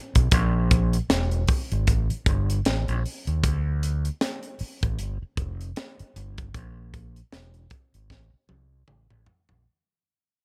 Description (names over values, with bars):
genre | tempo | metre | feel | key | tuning
lush 1970s-style soul | 77 BPM | 4/4 | swing 58% on 16ths | D minor | A4 = 440 Hz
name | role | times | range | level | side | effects
overdriven fingered electric bass | bass | 0.2-9.6 s | E1 to Eb2 | -28 LUFS | equal | none
tight funk drum kit | drums | 0.2-9.6 s | hi-hat, kick drum, snare drum, toms | -27 LUFS | equal | none
room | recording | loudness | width
little or no reverb | none | -25 LUFS | mono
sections
0.0-9.7 A section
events
fade-out 0.0-9.7; drum fill 8.1-9.7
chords
none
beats
| 0.32 1.10 1.88 2.66 | 3.44 4.21 4.99 5.77 | 6.55 7.33 8.10 8.88